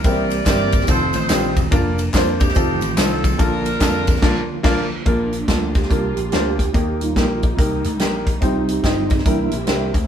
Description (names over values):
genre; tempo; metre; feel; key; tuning
uptempo gospel; 143 BPM; 4/4; swing 63% on 8ths; Bb major; A4 = 440 Hz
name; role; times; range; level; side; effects
warm horn section; melody; 0.0-4.6 s; C4 to D5; -23 LUFS; right 1 dB; none
clear upright piano; accompaniment; 0.0-9.9 s; Bb2 to Eb5; -23 LUFS; left 1 dB; none
mellow tonewheel organ; sustained chords; 0.0-9.9 s; D3 to G4; -25 LUFS; right 3 dB; fast rotary speaker, chorus vibrato
vintage slap bass; bass; 0.0-10.1 s; E1 to F2; -24 LUFS; equal; none
natural country drum kit; drums; 0.0-10.0 s; crash cymbal, hi-hat, kick drum, ride cymbal, snare drum; -19 LUFS; equal; none
tambourine and handclaps; percussion; 0.0-4.1 s; none; -32 LUFS; equal; none
muted studio string section; sustained chords; 5.1-10.1 s; Eb3 to F4; -35 LUFS; equal; none
room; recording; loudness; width
moderate stone room reverb, RT60 1.0 s; band playing live in one room; -16 LUFS; side -9 dB against mid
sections
0.0-5.1 A section; 5.1-10.1 B section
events
band accent 4.2-5.1; tonewheel organ solo 5.1-10.1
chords
0.0 C7; 0.9 F7; 1.7 Bb/F; 2.6 F7; 3.4 Bbmaj7; 5.1 Bb; 6.7 Eb; 8.4 Cm; 9.3 C7